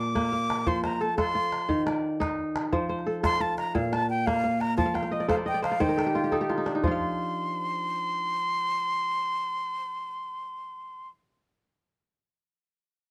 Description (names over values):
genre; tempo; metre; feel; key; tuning
west african traditional, West African string and xylophone music; 116 BPM (dotted quarters); 12/8; straight; F mixolydian; A4 = 437 Hz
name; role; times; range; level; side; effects
breathy reedy concert flute; melody; 0.0-11.1 s; Eb5 to D6; -31 LUFS; equal; none
kora; arpeggios; 0.0-11.2 s; Bb2 to A5; -30 LUFS; equal; none
calabash; percussion; 0.2-7.0 s; none; -36 LUFS; equal; none
room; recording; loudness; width
light reverb; dark, warm production; -28 LUFS; mono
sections
0.0-6.8 A section; 6.8-11.0 B section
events
kora fill 4.9-6.8; drum fill 6.3-6.8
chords
0.0 Bb; 0.7 F; 1.7 N.C.; 2.7 F; 3.8 Bb5; 4.8 F; 5.8 N.C.